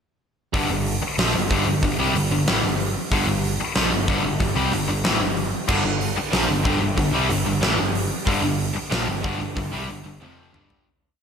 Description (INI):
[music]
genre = hard rock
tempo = 93 BPM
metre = 4/4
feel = straight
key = G minor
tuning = A4 = 440 Hz
[part]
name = sludgy distorted guitar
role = riff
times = 0.5-10.9 s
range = F2 to G3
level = -26 LUFS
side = right 8 dB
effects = overdrive
[part]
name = tight distorted guitar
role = riff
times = 0.5-10.9 s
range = F2 to G3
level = -25 LUFS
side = left 7 dB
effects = distortion, slapback echo
[part]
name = overdriven picked electric bass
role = bass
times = 0.5-10.8 s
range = F1 to C2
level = -28 LUFS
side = equal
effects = none
[part]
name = huge arena drum kit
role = drums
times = 0.5-10.9 s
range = crash cymbal, hi-hat, kick drum, snare drum, toms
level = -24 LUFS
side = equal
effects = none
[part]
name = high-gain distorted guitar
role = riff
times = 5.7-10.9 s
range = F2 to G3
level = -28 LUFS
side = equal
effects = distortion
[sound]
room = moderate lush hall reverb, RT60 1.8 s, small room ambience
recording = big arena sound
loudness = -19 LUFS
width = side -7 dB against mid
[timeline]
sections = 0.5-10.9 riff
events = fade-out 8.3-10.9; drum fill 10.2-10.9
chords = 0.5 Gm